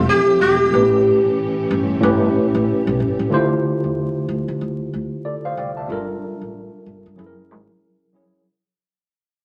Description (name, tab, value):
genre	R&B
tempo	93 BPM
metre	4/4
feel	swing 60% on 16ths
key	D dorian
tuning	A4 = 440 Hz
part	sitar	melody	0.0-2.6 s	G4	-19 LUFS	equal	none
part	tine electric piano	accompaniment	0.0-8.5 s	A2 to A5	-22 LUFS	equal	overdrive
part	soft string machine	sustained chords	0.0-3.3 s	E3 to E5	-29 LUFS	equal	ensemble chorus
part	upright bass	bass	0.0-7.7 s	E1 to D3	-28 LUFS	equal	none
room	moderate studio reverb, RT60 0.8 s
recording	vinyl crackle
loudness	-19 LUFS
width	mono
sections	0.0-3.3 A section; 3.3-8.5 B section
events	fade-out 3.3-8.5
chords	0.0 Fmaj9; 0.7 A7; 3.3 Dm11; 5.9 Gm9; 7.2 F#9